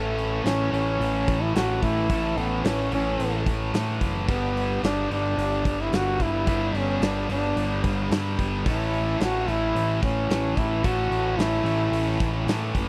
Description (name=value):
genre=classic rock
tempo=110 BPM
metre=4/4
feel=straight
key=A mixolydian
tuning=A4 = 441 Hz
part: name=growling trombone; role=melody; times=0.0-12.5 s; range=A3 to F#4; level=-29 LUFS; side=equal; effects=slapback echo
part: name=distorted electric guitar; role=riff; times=0.0-12.9 s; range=G2 to A3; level=-36 LUFS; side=equal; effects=distortion
part: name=tight distorted guitar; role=riff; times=0.0-12.9 s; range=G2 to A4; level=-33 LUFS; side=equal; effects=distortion
part: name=growling picked electric bass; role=bass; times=0.0-12.9 s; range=F#1 to A2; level=-30 LUFS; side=equal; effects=overdrive
part: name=big rock drum kit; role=drums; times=0.2-12.9 s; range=hi-hat, kick drum, snare drum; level=-31 LUFS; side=equal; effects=none
room=little or no reverb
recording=dry, close 1970s-style studio recording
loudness=-25 LUFS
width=mono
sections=0.0-12.9 A section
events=none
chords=0.0 A; 4.3 G; 8.7 A